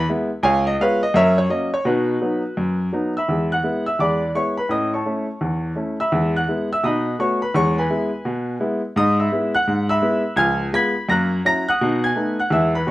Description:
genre	jazz, stride piano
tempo	169 BPM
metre	4/4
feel	swing 63% on 8ths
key	E major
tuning	A4 = 435 Hz
part	clear grand piano	solo	0.0-12.9 s	C#2 to B6	-18 LUFS	equal	none
room	moderate studio reverb, RT60 0.6 s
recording	none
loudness	-18 LUFS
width	side -17 dB against mid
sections	0.0-3.3 A section; 3.3-12.9 B section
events	none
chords	0.4 C#7; 1.2 F#; 1.9 B; 3.3 E; 4.0 E7; 4.7 A; 6.1 E; 6.8 B7; 7.5 E; 9.0 E/G#; 10.4 C#7; 11.1 F#7; 11.8 B7; 12.5 E

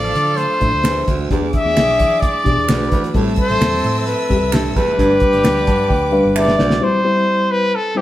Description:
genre	uptempo 1960s-style soul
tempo	130 BPM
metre	4/4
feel	straight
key	C major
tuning	A4 = 438 Hz
part	breathy trumpet	melody	0.0-8.0 s	G4 to E5	-17 LUFS	left 1 dB	none
part	dark studio violin section	second line	0.0-6.8 s	B4 to F6	-29 LUFS	right 2 dB	none
part	warm horn section	second line	0.0-6.6 s	B3 to A4	-25 LUFS	right 2 dB	none
part	mellow reed electric piano	accompaniment	0.0-8.0 s	E3 to A5	-20 LUFS	left 2 dB	fast tremolo
part	vintage muted fingered electric bass	bass	0.0-6.8 s	F1 to E3	-24 LUFS	equal	none
part	cloth-damped thuddy drum kit	drums	0.0-6.8 s	hi-hat, kick drum, snare drum	-19 LUFS	equal	none
part	congas	percussion	0.0-6.8 s	none	-32 LUFS	right 3 dB	none
part	breathy baritone saxophone	riff	0.8-6.8 s	D2 to A2	-23 LUFS	right 4 dB	none
part	finger snaps	percussion	0.8-6.5 s	none	-31 LUFS	right 4 dB	none
room	wet stone room reverb, RT60 1.2 s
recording	band playing live in one room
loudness	-13 LUFS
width	side -14 dB against mid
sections	0.0-6.8 A section; 6.8-8.0 B section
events	reed electric piano fill 5.4-6.8; drum fill 5.9-6.8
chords	0.0 Dm7; 1.3 E7; 3.1 Am7; 5.0 G; 6.8 C

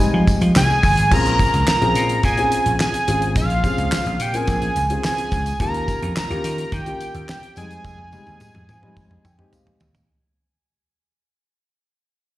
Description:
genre	early-eighties boogie funk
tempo	107 BPM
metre	4/4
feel	straight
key	Bb dorian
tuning	A4 = 440 Hz
part	fat analog lead	melody	0.0-9.5 s	F5 to Bb5	-22 LUFS	right 1 dB	chorus, slapback echo
part	dark concert grand piano	accompaniment	0.0-10.0 s	G3 to G5	-26 LUFS	left 3 dB	slapback echo
part	tambourine	percussion	0.0-10.1 s	none	-38 LUFS	right 3 dB	none
part	vintage slap bass	bass	0.1-10.0 s	G1 to F3	-22 LUFS	equal	none
part	damped 70s drum kit	drums	0.3-10.1 s	crash cymbal, handclaps, hi-hat, kick drum, snare drum, toms	-22 LUFS	equal	none
room	small room ambience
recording	live gig heard through the venue's PA, recital hall reverb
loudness	-16 LUFS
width	side -16 dB against mid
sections	0.0-1.1 A section; 1.1-10.1 B section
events	fade-out 1.1-10.1; drum fill 7.8-10.1; grand piano fill 9.0-10.1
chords	0.0 Fm7; 1.1 Bbm9; 5.6 Eb7; 7.6 Fm7

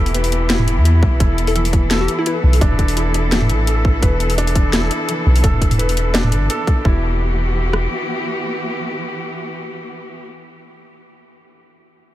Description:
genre	half-time drum and bass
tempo	170 BPM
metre	4/4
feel	swing 54% on 16ths, half-time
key	E minor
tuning	A4 = 441 Hz
part	rich symphonic cello section	sustained chords	0.0-10.3 s	E3 to A4	-24 LUFS	left 1 dB	sidechain pumping
part	felt-muted upright piano	arpeggios	0.0-7.0 s	E3 to B4	-24 LUFS	right 1 dB	ping-pong delay
part	long sustained 808-style bass	bass	0.0-7.9 s	E1 to E2	-17 LUFS	equal	tube saturation
part	drum and bass drum kit	drums	0.1-6.8 s	hi-hat, snare drum, toms	-21 LUFS	equal	overdrive, small room ambience
part	drum and bass drum kit	drums	1.0-7.8 s	kick drum, rim click	-16 LUFS	equal	overdrive, small room ambience
part	hollow square pluck	melody	1.5-2.3 s	E4 to A4	-26 LUFS	left 3 dB	none
room	little or no reverb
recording	none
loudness	-14 LUFS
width	side -14 dB against mid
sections	0.0-6.8 A section; 6.8-9.7 B section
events	drop 0.0-6.8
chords	0.0 Em; 6.8 Emadd9

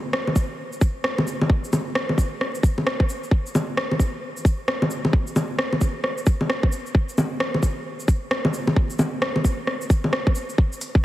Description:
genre	future garage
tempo	132 BPM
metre	4/4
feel	swing 62% on 16ths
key	none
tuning	none
part	organic electronic drum kit	drums	0.1-10.9 s	bongos, hi-hat, rim click, shaker	-23 LUFS	equal	overdrive
part	electronic kick drum	drums	0.4-11.0 s	none	-18 LUFS	equal	none
room	light reverb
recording	heavily compressed radio sound, vinyl crackle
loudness	-20 LUFS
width	side -15 dB against mid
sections	0.0-10.6 A section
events	none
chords	none

